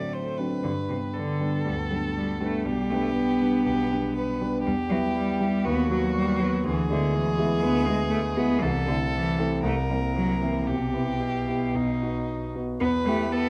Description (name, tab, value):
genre	quick classical-period movement for piano trio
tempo	119 BPM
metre	4/4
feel	rubato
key	G major, E minor from 4.6 s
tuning	A4 = 442 Hz
part	rich violin	melody	0.0-13.5 s	D#4 to D5	-34 LUFS	equal	none
part	rich cello	second line	0.0-13.5 s	B2 to B3	-30 LUFS	equal	none
part	dark concert grand piano	accompaniment	0.0-13.5 s	B1 to G4	-29 LUFS	equal	none
room	light reverb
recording	close, detailed microphones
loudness	-26 LUFS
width	mono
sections	0.0-12.8 A section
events	none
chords	0.0 D7/A; 0.6 G; 2.7 G/B; 4.6 Em; 5.6 B/D#; 6.6 E7/D; 8.6 Am/C; 9.6 C7; 10.7 Em/B; 11.7 B; 12.8 Em